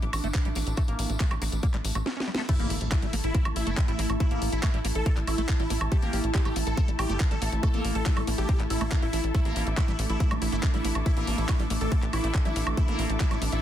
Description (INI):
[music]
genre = psychedelic trance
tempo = 140 BPM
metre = 4/4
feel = straight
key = unclear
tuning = A4 = 440 Hz
[part]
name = evolving wavetable pad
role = sustained chords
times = 0.0-13.6 s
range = A3 to E4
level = -35 LUFS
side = right 1 dB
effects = chorus, built-in reverb, sidechain pumping
[part]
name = liquid acid bass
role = riff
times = 0.0-13.4 s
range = G3 to E4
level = -36 LUFS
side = moving between left 3 dB and right 4 dB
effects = phaser, auto-pan, cassette tape, sidechain pumping, tape echo
[part]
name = tight sequencer bass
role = bass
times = 0.0-13.6 s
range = G1 to A1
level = -29 LUFS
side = equal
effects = none
[part]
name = garage drum kit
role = drums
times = 0.0-13.6 s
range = crash cymbal, handclaps, hi-hat, snare drum, woodblock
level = -34 LUFS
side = equal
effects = studio reverb, soft clipping on snare
[part]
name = muted studio string section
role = texture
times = 0.0-13.6 s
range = E4 to D6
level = -38 LUFS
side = left 1 dB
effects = sidechain pumping
[part]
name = tambourine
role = percussion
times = 0.1-2.0 s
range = none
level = -42 LUFS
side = left 5 dB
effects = none
[part]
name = electronic kick drum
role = drums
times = 0.3-13.3 s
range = none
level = -25 LUFS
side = equal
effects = studio reverb
[part]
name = dense compressed supersaw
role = melody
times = 2.5-13.6 s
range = E4 to A4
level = -35 LUFS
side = equal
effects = phaser, cassette tape, sidechain pumping, digital delay
[part]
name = impact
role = sound effects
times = 2.6-4.2 s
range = none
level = -38 LUFS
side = equal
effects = none
[sound]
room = little or no reverb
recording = dense, heavily limited modern master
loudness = -24 LUFS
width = side -11 dB against mid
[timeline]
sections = 0.0-2.5 A section; 2.5-13.6 B section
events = break 2.1-2.5; drum fill 2.1-2.5; drop 2.5-13.6; impact 2.5-4.2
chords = 0.0 A5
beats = 0.35 | 0.77 1.20 1.63 2.06 | 2.49 2.92 3.35 3.77 | 4.20 4.63 5.06 5.49 | 5.92 6.35 6.77 7.20 | 7.63 8.06 8.49 8.92 | 9.35 9.77 10.20 10.63 | 11.06 11.49 11.92 12.35 | 12.77 13.20